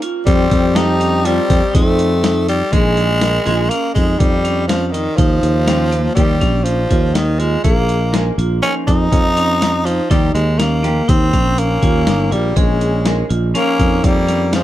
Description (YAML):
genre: progressive instrumental, band music in an uneven meter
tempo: 122 BPM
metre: 5/4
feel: straight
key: Bb dorian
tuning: A4 = 440 Hz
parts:
  - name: mellow flugelhorn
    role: second line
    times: 0.0-2.4, 11.6-14.6 s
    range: Ab3 to G4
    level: -23 LUFS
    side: left 4 dB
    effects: none
  - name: vibraphone with hard mallets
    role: arpeggios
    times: 0.0-14.6 s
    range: Bb3 to Bb4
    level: -23 LUFS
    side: right 2 dB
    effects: tape echo
  - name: boom bap sampler-style drum kit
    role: drums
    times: 0.0-14.6 s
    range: hi-hat, kick drum, snare drum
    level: -17 LUFS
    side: equal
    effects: none
  - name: raspy tenor saxophone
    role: melody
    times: 0.3-14.6 s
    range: Eb3 to Eb4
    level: -18 LUFS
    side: equal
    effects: tape echo
  - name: sustaining fretless electric bass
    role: bass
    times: 0.3-14.6 s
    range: G1 to F2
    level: -17 LUFS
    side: equal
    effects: none
  - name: vintage hollow-body jazz guitar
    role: accompaniment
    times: 0.8-14.2 s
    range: F3 to A4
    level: -24 LUFS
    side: left 1 dB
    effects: none
room: light reverb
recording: none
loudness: -13 LUFS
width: side -13 dB against mid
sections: 0.0-2.7 A section; 2.7-14.6 B section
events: none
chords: 0.3 F9; 2.7 Bbm7; 5.2 Eb7; 7.6 Bbm7; 10.1 Eb7; 12.6 Bbm7